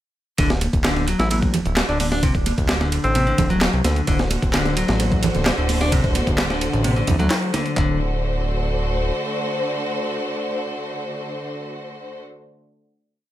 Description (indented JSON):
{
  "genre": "breakbeat, breaks",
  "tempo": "130 BPM",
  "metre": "4/4",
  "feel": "straight",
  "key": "unclear",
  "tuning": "A4 = 440 Hz",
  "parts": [
    { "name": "clean electric guitar", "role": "riff", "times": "0.4-8.0 s", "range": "C3 to D4", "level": "-24 LUFS", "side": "left 1 dB", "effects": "vintage 12-bit sampler grit, tape echo" },
    { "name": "fat analog bass", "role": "bass", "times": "0.4-9.1 s", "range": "D1 to D2", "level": "-23 LUFS", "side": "equal", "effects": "none" },
    { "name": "breakbeat sampler-style drum kit", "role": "drums", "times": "0.4-7.9 s", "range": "handclaps, hi-hat, kick drum, ride cymbal, snare drum", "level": "-22 LUFS", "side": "equal", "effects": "small room ambience" },
    { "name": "punchy analog drum machine", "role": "drums", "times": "0.4-7.7 s", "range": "handclaps, hi-hat", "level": "-29 LUFS", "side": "right 1 dB", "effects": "overdrive, small room ambience" },
    { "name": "congas", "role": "percussion", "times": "0.6-7.6 s", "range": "none", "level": "-28 LUFS", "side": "right 3 dB", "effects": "none" },
    { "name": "breathy alto saxophone", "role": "melody", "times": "1.2-3.5 s", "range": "C4 to E4", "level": "-27 LUFS", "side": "equal", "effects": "AM radio sound, tape echo" },
    { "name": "bright studio string section", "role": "sustained chords", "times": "4.1-12.2 s", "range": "D3 to C5", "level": "-26 LUFS", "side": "equal", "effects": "sidechain pumping" }
  ],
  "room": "light reverb",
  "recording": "none",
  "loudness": "-18 LUFS",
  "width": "side -13 dB against mid",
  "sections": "0.4-7.8 drop; 7.8-11.5 final chord",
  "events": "drop 0.4-7.8",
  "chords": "0.4 D7",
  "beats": "| 0.38 0.84 1.31 1.77 | 2.23 2.69 3.15 3.62 | 4.08 4.54 5.00 5.46 | 5.92 6.38 6.84 7.31 | 7.77 8.23 8.69 9.15 | 9.62 10.08 10.54 11.00"
}